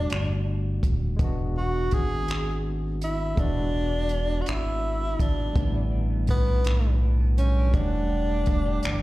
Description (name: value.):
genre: slow six-eight R&B.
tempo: 55 BPM (dotted quarters).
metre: 6/8.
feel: straight.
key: unclear.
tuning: A4 = 439 Hz.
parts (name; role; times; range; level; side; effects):
breathy tenor saxophone; melody; 0.0-9.0 s; B3 to G#4; -30 LUFS; right 1 dB; slapback echo.
barky tine electric piano; accompaniment; 0.0-9.0 s; D3 to F#5; -34 LUFS; left 2 dB; overdrive, medium tremolo, slapback echo.
smooth synth bass; bass; 0.0-9.0 s; D#1 to B1; -25 LUFS; equal; none.
compact cocktail drum kit; drums; 0.1-9.0 s; finger snaps, hi-hat, kick drum; -26 LUFS; equal; none.
semi-hollow electric guitar; second line; 5.6-9.0 s; A2 to G4; -33 LUFS; right 3 dB; slapback echo.
room: studio reverb.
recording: live gig heard through the venue's PA, recital hall reverb.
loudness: -22 LUFS.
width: side -18 dB against mid.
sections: 0.0-9.0 A section.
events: none.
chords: 0.0 Em11 (rootless); 1.2 E9; 5.6 A9sus4; 7.7 Em11.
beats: 0.10 | 1.19 2.28 | 3.38 4.47 | 5.56 6.65 | 7.74 8.83.